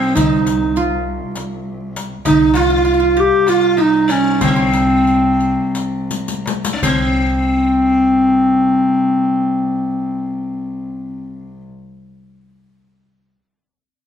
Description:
Turkish makam ensemble; 160-200 BPM (eighths); 7/8; straight; C makam kurdi; A4 = 440 Hz
mellow clarinet; melody; 0.0-11.6 s; C4 to G4; -15 LUFS; equal
qanun; second line; 0.0-11.6 s; C4 to G4; -24 LUFS; right 1 dB
sitar; second line; 0.0-11.6 s; C4 to F4; -24 LUFS; left 4 dB
dark cello; drone; 0.0-11.6 s; C2; -24 LUFS; left 2 dB
upright bass; bass; 0.2-11.6 s; C2; -24 LUFS; equal
darbuka; percussion; 0.2-7.2 s; -22 LUFS; left 2 dB
riq; percussion; 0.2-7.2 s; -26 LUFS; left 7 dB
light reverb; band playing live in one room; -13 LUFS; side -9 dB against mid
0.0-6.8 A section; 6.8-12.1 B section
slowing down 2.3-6.8; drum fill 6.1-6.8
| 0.16 0.46 0.76 1.06 1.36 1.66 1.96 | 2.26 2.56 2.86 3.16 3.47 3.78 4.09 | 4.41 4.74 5.07 5.40 5.75 6.10 6.46 | 6.83 7.20 7.57 7.95 8.32 8.70 9.07 | 9.45 9.82 10.19 10.57 10.94 11.32

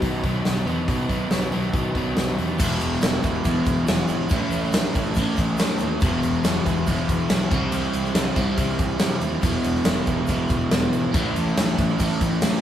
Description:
classic rock; 140 BPM; 4/4; straight; A4 = 445 Hz
crunchy overdriven guitar; riff; 0.0-12.6 s; E2 to C4; -30 LUFS; left 5 dB
overdriven semi-hollow guitar; riff; 0.0-12.6 s; A2 to E4; -26 LUFS; right 3 dB
growling fingered electric bass; bass; 0.0-12.6 s; E1 to C3; -30 LUFS; equal; overdrive
big rock drum kit; drums; 0.0-12.5 s; crash cymbal, hi-hat, kick drum, snare drum; -24 LUFS; equal
crunchy overdriven guitar; riff; 2.6-12.6 s; E2 to C4; -26 LUFS; left 1 dB; phaser
egg shaker; percussion; 2.6-12.6 s; -46 LUFS; left 4 dB
moderate stone room reverb, RT60 1.2 s; rough rehearsal-room recording; -20 LUFS; side -10 dB against mid
0.0-2.6 A section; 2.6-12.6 B section
0.0 B; 2.6 E; 4.3 A; 6.0 E; 7.5 C; 9.4 E; 11.1 A
0.03 0.46 | 0.89 1.31 1.74 2.17 | 2.60 3.03 3.46 3.88 | 4.31 4.74 5.17 5.59 | 6.02 6.45 6.88 7.30 | 7.73 8.16 8.58 9.01 | 9.44 9.86 10.29 10.72 | 11.14 11.57 12.00 12.43

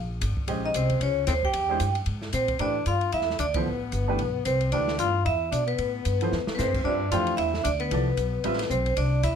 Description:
modal jazz; 226 BPM; 4/4; swing 58% on 8ths; A minor; A4 = 440 Hz
upright bass; bass; 0.0-9.4 s; G1 to B2; -28 LUFS; equal
open jazz drum kit; drums; 0.2-9.3 s; crash cymbal, hi-hat, kick drum, ride cymbal, snare drum; -34 LUFS; equal
clear baby grand piano; accompaniment; 0.5-8.6 s; E3 to E5; -31 LUFS; right 4 dB
growling tenor saxophone; second line; 0.6-9.4 s; B3 to G4; -31 LUFS; left 8 dB
vibraphone with medium hard mallets; melody; 0.7-9.4 s; B4 to G5; -28 LUFS; right 2 dB
light reverb; close, detailed microphones; -23 LUFS; side -7 dB against mid
0.0-2.6 A section; 2.6-9.4 B section
band accent 3.5; drum fill 6.3
0.0 Bbm11; 1.5 Eaug; 2.6 A9sus4; 6.9 G9sus4
0.22 | 0.48 0.75 1.01 1.28 | 1.54 1.81 2.07 2.34 | 2.60 2.87 3.13 3.40 | 3.66 3.93 4.20 4.46 | 4.73 4.99 5.26 5.52 | 5.79 6.06 6.32 6.59 | 6.85 7.12 7.38 7.65 | 7.91 8.18 8.44 8.71 | 8.97 9.24

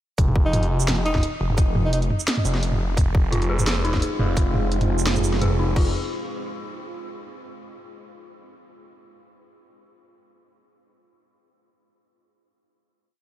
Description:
half-time drum and bass; 172 BPM; 4/4; swing 54% on 16ths, half-time; F minor; A4 = 439 Hz
phased detuned saw bass; bass; 0.2-5.9 s; F1; -23 LUFS; equal; phaser
drum and bass drum kit; drums; 0.2-5.8 s; crash cymbal, hi-hat, shaker, snare drum, toms; -26 LUFS; right 1 dB
electronic kick drum; drums; 0.2-5.8 s; -19 LUFS; equal
breathy alto saxophone; melody; 0.5-2.0 s; Eb4; -30 LUFS; equal; analog delay
deep dark ambient pad; sustained chords; 4.1-5.9 s; Ab3 to F4; -31 LUFS; right 2 dB; chorus, built-in reverb, sidechain pumping
dark detuned synth bell; arpeggios; 3.3-5.9 s; Eb4 to Ab4; -31 LUFS; left 2 dB; chorus, vintage 12-bit sampler grit, analog delay
light reverb, digital ambience; -19 LUFS; side -13 dB against mid
0.2-5.8 drop; 5.8-7.2 final chord
drop 0.2-5.8
0.2 Fm; 5.8 F5
| 0.18 0.53 0.88 1.23 | 1.58 1.93 2.28 2.63 | 2.98 3.32 3.67 4.02 | 4.37 4.72 5.07 5.42 | 5.77

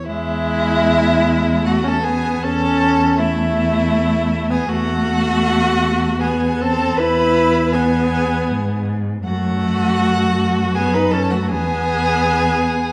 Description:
classical, slow romantic movement for string quartet; 79 BPM; 3/4; rubato; A4 = 441 Hz
rich violin; second line; 0.0-12.9 s; E4 to B4; -23 LUFS; equal
rich violin; melody; 0.1-12.9 s; E5 to B5; -28 LUFS; equal
clear viola; accompaniment; 0.1-12.9 s; G#3 to E4; -22 LUFS; equal
warm cello; bass; 0.1-12.9 s; E2 to G#2; -23 LUFS; equal
wet recital hall reverb, RT60 1.6 s; dark, warm production; -17 LUFS; mono
0.1-12.9 A section
0.1 A5/E; 7.0 E; 9.2 F#m; 11.5 E
| 0.06 0.86 1.64 | 2.42 3.18 3.92 | 4.70 5.46 6.22 | 6.99 7.75 8.50 | 9.25 10.00 10.75 | 11.50 12.25

